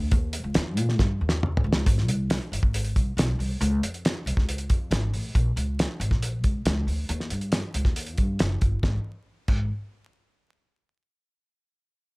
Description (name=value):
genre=uptempo 1960s-style soul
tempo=138 BPM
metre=4/4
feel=straight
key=Ab major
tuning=A4 = 441 Hz
part: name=upright bass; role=bass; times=0.0-9.7 s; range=Gb1 to Bb2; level=-27 LUFS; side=equal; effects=none
part: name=cloth-damped thuddy drum kit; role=drums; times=0.1-9.6 s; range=crash cymbal, hi-hat, kick drum, snare drum, toms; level=-24 LUFS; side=equal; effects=none
room=light reverb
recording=vinyl crackle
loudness=-23 LUFS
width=side -28 dB against mid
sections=0.0-1.9 A section; 1.9-8.8 B section; 8.8-10.6 C section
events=drum fill 1.0-1.9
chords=none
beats=| 0.12 0.56 0.99 1.43 | 1.86 2.30 2.73 3.17 | 3.60 4.04 4.47 4.91 | 5.34 5.78 6.22 6.65 | 7.09 7.52 7.96 8.39 | 8.83 9.26